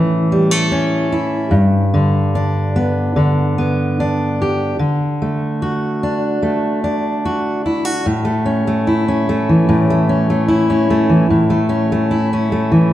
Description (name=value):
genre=folk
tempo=74 BPM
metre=4/4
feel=straight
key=A mixolydian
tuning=A4 = 440 Hz
part: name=fingerpicked steel-string acoustic guitar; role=solo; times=0.0-12.9 s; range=G2 to G4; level=-14 LUFS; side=equal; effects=none
room=wet recital hall reverb, RT60 1.7 s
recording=dark, warm production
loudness=-14 LUFS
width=side -13 dB against mid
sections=0.0-8.1 A section; 8.1-12.9 B section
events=none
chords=0.0 A; 1.5 G; 4.8 D; 8.1 A